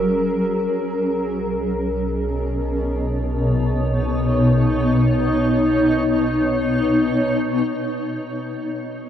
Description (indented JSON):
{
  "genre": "ambient",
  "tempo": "free time",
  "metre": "none",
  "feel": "none",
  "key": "unclear",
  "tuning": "A4 = 442 Hz",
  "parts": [
    { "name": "granular cloud pad", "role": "sustained chords", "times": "0.0-9.1 s", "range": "B2 to C#5", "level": "-18 LUFS", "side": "equal", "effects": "built-in reverb" },
    { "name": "warm sub bass", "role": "bass", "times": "0.0-7.6 s", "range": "F#1 to B1", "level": "-28 LUFS", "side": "equal", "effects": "none" }
  ],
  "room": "wet huge ambient reverb, RT60 7.9 s",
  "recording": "worn, warbling old tape, cassette tape, warbly pitch drift",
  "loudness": "-18 LUFS",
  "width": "side -10 dB against mid",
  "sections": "0.0-7.7 A section; 7.7-9.1 B section",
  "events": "fade-out on sub bass 0.0-7.7; filter sweep on ambient pad 0.0-7.7",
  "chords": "0.0 F#add9; 0.7 Badd9; 7.7 F#sus2"
}